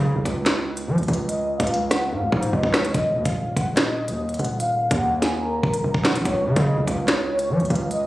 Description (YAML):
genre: hip hop, drill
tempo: 145 BPM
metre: 4/4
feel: half-time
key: unclear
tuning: A4 = 441 Hz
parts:
  - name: hard-hitting 808-style bass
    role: bass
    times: 0.0-8.1 s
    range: Eb1 to F3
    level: -23 LUFS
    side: equal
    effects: none
  - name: drill drum kit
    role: drums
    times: 0.3-8.0 s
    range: handclaps, hi-hat, kick drum, rim click, snare drum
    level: -23 LUFS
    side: equal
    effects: none
  - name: warm studio violin section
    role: melody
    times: 1.3-8.1 s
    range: Ab4 to Gb6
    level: -25 LUFS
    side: equal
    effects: low-pass filter, tape echo
room: light reverb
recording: recorded on a phone in the room, studio reverb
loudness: -20 LUFS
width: side -16 dB against mid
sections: 0.0-8.1 A section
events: break 0.0-1.3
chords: 0.0 Db; 2.9 Ebmadd9; 6.3 Db